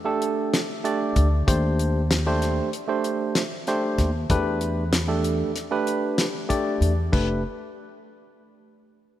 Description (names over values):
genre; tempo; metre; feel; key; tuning
progressive instrumental, band music in an uneven meter; 191 BPM (eighths); 9/8; straight; F lydian; A4 = 440 Hz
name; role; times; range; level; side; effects
barky tine electric piano; accompaniment; 0.0-7.4 s; A3 to D5; -25 LUFS; moving between left 3 dB and right 4 dB; auto-pan
damped 70s drum kit; drums; 0.2-7.3 s; crash cymbal, hi-hat, kick drum, snare drum; -26 LUFS; left 1 dB; none
upright bass; bass; 1.2-7.4 s; F1 to E2; -23 LUFS; equal; none
room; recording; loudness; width
moderate lush hall reverb, RT60 2.9 s; rough home demo mix; -21 LUFS; side -12 dB against mid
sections
0.0-7.1 A section; 7.1-9.2 B section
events
none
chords
0.0 Em7 (rootless); 1.5 Eb; 4.3 Em7; 7.1 F